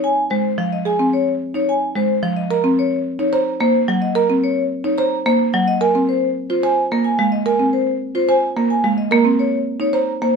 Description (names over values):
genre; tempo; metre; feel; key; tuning
classical, minimalist pattern music; 109 BPM; 3/4; straight; Eb dorian; A4 = 442 Hz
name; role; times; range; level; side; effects
vibraphone with medium hard mallets; melody; 0.0-10.4 s; Bb4 to Bb5; -20 LUFS; left 4 dB; none
buzzing marimba with medium mallets; arpeggios; 0.0-10.1 s; C4 to C5; -20 LUFS; right 2 dB; none
buzzing marimba with hard mallets; accompaniment; 0.3-10.4 s; F3 to Bb3; -20 LUFS; right 3 dB; none
room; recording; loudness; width
light reverb; none; -15 LUFS; side -5 dB against mid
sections
0.0-10.4 A section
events
none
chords
0.0 Dbmaj7 (rootless); 2.5 Ebm7; 5.8 Fm; 9.1 Eb7(no3)